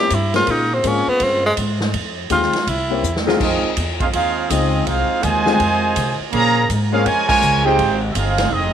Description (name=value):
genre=jazz, big band swing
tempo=164 BPM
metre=4/4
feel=swing 64% on 8ths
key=F minor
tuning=A4 = 445 Hz
part: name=clear tenor saxophone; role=melody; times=0.0-3.3 s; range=Ab3 to G4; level=-18 LUFS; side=equal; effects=none
part: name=warm grand piano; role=accompaniment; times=0.0-7.8 s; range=Ab3 to G5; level=-23 LUFS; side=left 13 dB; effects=none
part: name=dark saxophone section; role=sustained chords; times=0.0-3.7 s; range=Db3 to F4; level=-26 LUFS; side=equal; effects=none
part: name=upright bass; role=bass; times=0.1-8.7 s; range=F1 to C3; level=-22 LUFS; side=equal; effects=none
part: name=swinging big-band drum kit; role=drums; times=0.1-8.6 s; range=crash cymbal, hi-hat, kick drum, ride cymbal, snare drum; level=-24 LUFS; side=right 1 dB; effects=none
part: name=warm trumpet section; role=melody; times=3.4-8.7 s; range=C4 to Bb5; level=-18 LUFS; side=right 1 dB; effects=none
part: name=clear trombone section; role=second line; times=3.4-8.7 s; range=C3 to G4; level=-23 LUFS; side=right 10 dB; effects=none
room=moderate spring reverb, RT60 2.1 s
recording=1960s-style stereo with parts hard left and right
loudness=-15 LUFS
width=side -9 dB against mid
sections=0.0-3.4 A section; 3.4-8.7 B section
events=tenor saxophone solo 0.0-3.4; drum fill 3.0-3.4; band accent 7.2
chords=0.5 Bbm7; 1.9 Fm7; 2.7 C7b9; 3.4 Fm7; 6.3 Bbm7; 7.8 Fm7